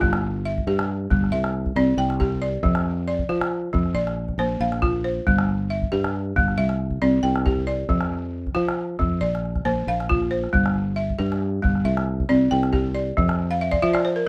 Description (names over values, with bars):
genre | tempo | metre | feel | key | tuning
west african traditional, West African string and xylophone music | 91 BPM (dotted quarters) | 12/8 | straight | unclear | A4 = 439 Hz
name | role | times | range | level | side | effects
balafon | arpeggios | 0.0-14.3 s | F3 to G5 | -25 LUFS | equal | none
sustaining fretless electric bass | bass | 0.0-14.2 s | G1 to F3 | -28 LUFS | equal | none
calabash | percussion | 0.0-14.0 s | none | -29 LUFS | equal | none
room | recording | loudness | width
moderate small room reverb, RT60 0.5 s | none | -23 LUFS | mono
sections
0.0-14.3 A section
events
balafon fill 13.5-14.3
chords
0.0 Em/G; 1.3 C; 2.6 Dm/F; 4.0 Bb; 5.3 C/G; 6.6 C; 7.9 Dm/F; 9.2 Bb; 10.5 C/G; 11.9 C; 13.2 Fmaj7(no3)